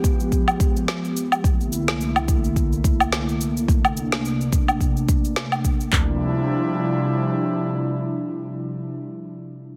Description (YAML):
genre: sunset chillout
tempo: 107 BPM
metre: 4/4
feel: swing 57% on 16ths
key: D minor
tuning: A4 = 443 Hz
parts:
  - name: airy breathy pad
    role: sustained chords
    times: 0.0-8.9 s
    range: C2 to G4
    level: -26 LUFS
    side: equal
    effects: chorus
  - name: deep house drum kit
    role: drums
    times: 0.0-6.1 s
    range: handclaps, kick drum, toms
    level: -22 LUFS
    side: equal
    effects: none
  - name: electronic cabasa, woodblock and snare drum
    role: drums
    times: 0.0-5.9 s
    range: none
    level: -26 LUFS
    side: equal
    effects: none
room: moderate lush hall reverb, RT60 1.6 s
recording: dense, heavily limited modern master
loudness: -22 LUFS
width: mono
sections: 0.0-5.9 A section; 5.9-8.2 B section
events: filter sweep on analog synth pad 0.0-5.9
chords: 0.0 G7b9; 1.4 C13; 3.7 Bbmaj9; 5.9 Dm11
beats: 0.32 0.88 | 1.44 2.00 2.56 3.12 | 3.68 4.24 4.80 5.36 | 5.92 6.49 7.05 7.61